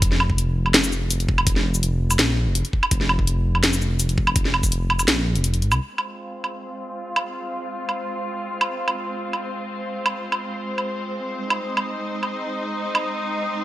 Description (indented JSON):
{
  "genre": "half-time drum and bass",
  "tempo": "166 BPM",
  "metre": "4/4",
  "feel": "half-time",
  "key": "F minor",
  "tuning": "A4 = 440 Hz",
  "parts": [
    { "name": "dark detuned saw bass", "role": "bass", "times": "0.0-5.8 s", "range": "F1 to C2", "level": "-21 LUFS", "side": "equal", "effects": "tube saturation" },
    { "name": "drum and bass drum kit", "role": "drums", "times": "0.0-13.0 s", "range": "hi-hat, shaker, snare drum, woodblock", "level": "-20 LUFS", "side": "equal", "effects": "none" },
    { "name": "electronic kick drum", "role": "drums", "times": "0.0-4.7 s", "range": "none", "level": "-22 LUFS", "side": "equal", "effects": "none" },
    { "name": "rich studio string section", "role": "sustained chords", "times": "5.8-13.6 s", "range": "Ab3 to C5", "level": "-27 LUFS", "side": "equal", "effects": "sidechain pumping, low-pass filter" }
  ],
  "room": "light reverb, digital ambience",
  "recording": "bright 1980s-style digital production",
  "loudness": "-20 LUFS",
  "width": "side -15 dB against mid",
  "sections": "0.0-5.8 A section; 5.8-13.6 B section",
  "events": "drop 0.0-5.8; kick drops out 5.4-5.8; filter sweep on string section 5.8-13.6",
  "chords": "0.0 N.C.; 5.8 Fm",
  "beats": "| 0.02 0.38 0.74 1.10 | 1.47 1.83 2.19 2.55 | 2.91 3.27 3.63 4.00 | 4.36 4.72 5.08 5.44 | 5.80 6.17 6.53 6.89 | 7.25 7.61 7.97 8.33 | 8.70 9.06 9.42 9.78 | 10.14 10.50 10.86 11.22 | 11.59 11.95 12.31 12.67 | 13.03 13.39"
}